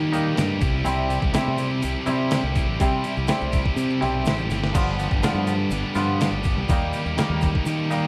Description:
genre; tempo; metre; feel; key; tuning
indie rock; 124 BPM; 4/4; straight; unclear; A4 = 440 Hz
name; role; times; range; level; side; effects
scooped high-gain guitar; riff; 0.0-8.1 s; G2 to G4; -29 LUFS; equal; distortion
growling fingered electric bass; bass; 0.0-8.1 s; G1 to Eb3; -28 LUFS; equal; overdrive
twangy electric guitar; riff; 0.1-8.1 s; C3 to F4; -30 LUFS; equal; subtle chorus
detuned 8-bit digital drum machine; drums; 0.1-8.0 s; crash cymbal, hi-hat, kick drum, snare drum; -27 LUFS; equal; none
tube shaker; percussion; 0.1-8.0 s; none; -49 LUFS; equal; none
room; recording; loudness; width
little or no reverb; dark, warm production; -23 LUFS; mono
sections
0.0-8.1 A section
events
drum fill 4.5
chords
0.0 Eb; 0.6 C; 4.7 G7; 6.7 Eb

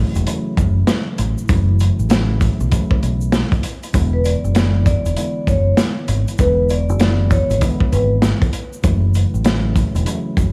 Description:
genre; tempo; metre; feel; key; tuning
hip hop, boom-bap hip-hop; 98 BPM; 4/4; swing 63% on 16ths; F# minor; A4 = 438 Hz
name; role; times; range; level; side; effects
mellow tine electric piano; accompaniment; 0.0-10.5 s; C#3 to E4; -25 LUFS; equal; high-pass filter, low-pass filter
deep dub fingered electric bass; bass; 0.0-10.5 s; E1 to B1; -20 LUFS; equal; none
crunchy breakbeat drum kit; drums; 0.2-10.5 s; hi-hat, kick drum, snare drum; -20 LUFS; equal; none
egg shaker; percussion; 0.2-10.5 s; none; -44 LUFS; equal; none
vibraphone with soft mallets; melody; 4.1-8.1 s; B4 to D5; -24 LUFS; equal; high-pass filter, low-pass filter, tape echo
room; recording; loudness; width
light reverb, small room ambience; vinyl crackle; -17 LUFS; mono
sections
0.0-10.5 A section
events
none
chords
0.0 F#m7; 3.9 E7; 8.8 F#m7

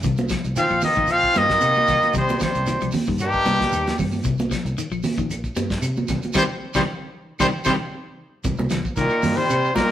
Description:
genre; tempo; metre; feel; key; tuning
afrobeat; 114 BPM; 4/4; swing 53% on 16ths; C minor; A4 = 439 Hz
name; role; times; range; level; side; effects
electric guitar at the edge of break-up; arpeggios; 0.0-9.9 s; C3 to G3; -28 LUFS; left 6 dB; none
fingered electric bass; bass; 0.0-9.7 s; Bb1 to C3; -27 LUFS; equal; none
cloth-damped thuddy drum kit; drums; 0.0-9.9 s; hi-hat, kick drum, snare drum; -30 LUFS; equal; none
congas; percussion; 0.0-9.9 s; none; -27 LUFS; right 3 dB; none
shekere; percussion; 0.0-9.9 s; none; -34 LUFS; right 3 dB; none
claves; percussion; 0.3-9.6 s; none; -38 LUFS; equal; none
clear trumpet; melody; 0.6-9.9 s; G4 to F5; -20 LUFS; left 1 dB; none
brilliant trombone; second line; 0.6-9.9 s; Eb3 to C4; -30 LUFS; right 2 dB; none
raspy baritone saxophone; second line; 0.6-9.9 s; G2 to F3; -28 LUFS; right 1 dB; none
room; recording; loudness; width
moderate stone room reverb, RT60 1.2 s; rough rehearsal-room recording; -19 LUFS; side -11 dB against mid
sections
0.0-8.5 A section; 8.5-9.9 B section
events
band accent 6.4-8.5; drum fill 7.9-8.5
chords
0.0 Cm; 8.5 Cm7

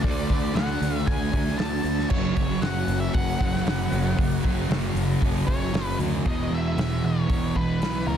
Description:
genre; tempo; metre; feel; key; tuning
rock, shoegaze and dream pop; 116 BPM; 4/4; straight; unclear; A4 = 440 Hz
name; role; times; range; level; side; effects
octave-fuzz lead guitar; melody; 0.0-8.2 s; A#4 to A5; -32 LUFS; left 2 dB; distortion, tape echo
thick fuzz guitar; riff; 0.0-8.2 s; E2 to D4; -26 LUFS; right 1 dB; distortion, lush chorus
fuzz picked electric bass; bass; 0.0-8.2 s; E1 to D2; -28 LUFS; equal; overdrive
loose indie drum kit; drums; 0.0-7.9 s; crash cymbal, hi-hat, kick drum, snare drum; -28 LUFS; equal; none
room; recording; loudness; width
light reverb, small room ambience; dense, heavily limited modern master; -22 LUFS; side -9 dB against mid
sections
0.0-6.3 A section; 6.3-8.2 B section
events
none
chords
0.0 D; 2.1 F#5; 6.3 E5

